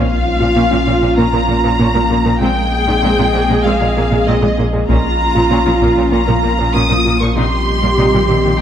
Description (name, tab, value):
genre	cinematic, hybrid orchestral and electronic film score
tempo	97 BPM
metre	4/4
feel	straight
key	Bb dorian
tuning	A4 = 440 Hz
part	warm symphonic violin section	melody	0.0-8.6 s	Eb5 to Eb6	-18 LUFS	left 1 dB	none
part	warm symphonic viola section	accompaniment	0.0-8.6 s	F3 to Ab4	-18 LUFS	right 1 dB	none
part	hollow soft pad	sustained chords	0.0-8.6 s	G3 to F5	-20 LUFS	left 1 dB	chorus
part	glassy wavetable pluck	arpeggios	0.0-8.5 s	C3 to Bb4	-20 LUFS	left 1 dB	chorus, digital delay
part	warm sub bass	bass	0.0-8.6 s	Bb1	-19 LUFS	equal	none
part	rich symphonic cello section	bass	0.4-8.5 s	Bb2	-20 LUFS	right 2 dB	none
part	taiko ensemble	drums	4.9-6.1 s	none	-21 LUFS	equal	none
room	wet scoring stage reverb, RT60 2.1 s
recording	none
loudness	-11 LUFS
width	side -9 dB against mid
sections	0.0-8.6 A section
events	none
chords	0.0 Bbm; 2.4 Abadd9/Bb; 4.9 Bbm; 7.4 Cm/Bb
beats	0.56 1.18 1.79 | 2.41 3.03 3.65 4.27 | 4.89 5.51 6.12 6.74 | 7.36 7.98 8.60